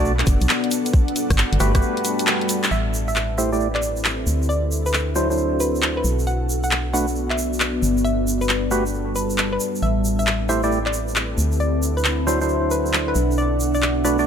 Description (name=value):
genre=UK garage, two-step garage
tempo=135 BPM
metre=4/4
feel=swing 66% on 16ths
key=A dorian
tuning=A4 = 440 Hz
part: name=ethereal airy pad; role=sustained chords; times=0.0-14.3 s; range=B3 to F#5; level=-30 LUFS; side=left 1 dB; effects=ensemble chorus, built-in reverb, sidechain pumping
part: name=percussive organ stab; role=stabs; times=0.0-14.3 s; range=F#3 to D5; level=-24 LUFS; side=right 1 dB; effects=wide subtle chorus, tape echo
part: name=organ-like FM bass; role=bass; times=0.0-14.3 s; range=F#1 to D2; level=-23 LUFS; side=equal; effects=tube saturation
part: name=deep dark ambient pad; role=texture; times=0.1-14.3 s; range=G3 to B5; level=-27 LUFS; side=equal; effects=chorus, built-in reverb, sidechain pumping
part: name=egg shaker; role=percussion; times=0.1-14.2 s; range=none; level=-31 LUFS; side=right 2 dB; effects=none
part: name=garage drum kit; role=drums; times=0.2-13.9 s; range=handclaps, hi-hat, rim click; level=-22 LUFS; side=equal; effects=none
part: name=electronic kick drum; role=drums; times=0.3-1.8 s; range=none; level=-18 LUFS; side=equal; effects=none
part: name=hollow square pluck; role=melody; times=2.7-14.2 s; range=B4 to F#5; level=-27 LUFS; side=left 2 dB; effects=chorus, tape echo
room=light reverb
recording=none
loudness=-18 LUFS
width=side -8 dB against mid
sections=0.0-2.7 A section; 2.7-14.3 B section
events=break 1.8-2.7; drum fill 2.3-2.7; band accent 2.6; filter sweep on synth stab 2.7-14.3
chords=0.0 Bm7; 0.7 Gmaj9; 2.7 Am7; 4.3 D9; 6.0 Bm7; 7.8 Gmaj9; 9.8 Am7; 11.4 D9; 13.2 Bm7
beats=0.05 0.49 | 0.94 1.38 1.82 2.27 | 2.71 3.16 3.60 4.05 | 4.49 4.93 5.38 5.82 | 6.27 6.71 7.16 7.60 | 8.05 8.49 8.94 9.38 | 9.82 10.27 10.71 11.16 | 11.60 12.05 12.49 12.94 | 13.38 13.82